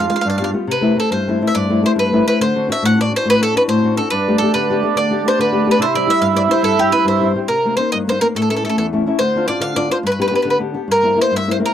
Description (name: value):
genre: italian folk, Italian serenade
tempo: 141 BPM (dotted quarters)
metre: 6/8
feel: rubato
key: C major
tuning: A4 = 440 Hz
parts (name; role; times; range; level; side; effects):
- bowl-back mandolin; melody; 0.0-11.7 s; G4 to F#5; -17 LUFS; equal; none
- mellow accordion; second line; 0.0-0.5, 4.1-7.5 s; C4 to F4; -18 LUFS; right 9 dB; none
- flamenco guitar; accompaniment; 0.0-11.7 s; E2 to G4; -17 LUFS; left 2 dB; none
room: light reverb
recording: dry, close 1970s-style studio recording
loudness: -14 LUFS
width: side -10 dB against mid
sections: 0.7-7.5 A section; 7.5-11.7 B section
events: none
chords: 0.2 G7; 0.7 C6; 2.4 D7; 4.1 Gadd9; 5.8 C; 7.5 Cm7; 8.3 A; 9.2 Dm7; 10.0 G; 10.9 C7/G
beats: 0.25 | 0.68 1.11 | 1.55 1.98 | 2.40 2.82 | 3.25 3.67 | 4.10 4.53 | 4.96 5.38 | 5.80 6.22 | 6.64 7.07 | 7.50 7.92 | 8.35 8.77 | 9.19 9.61 | 10.04 10.47 | 10.90 11.33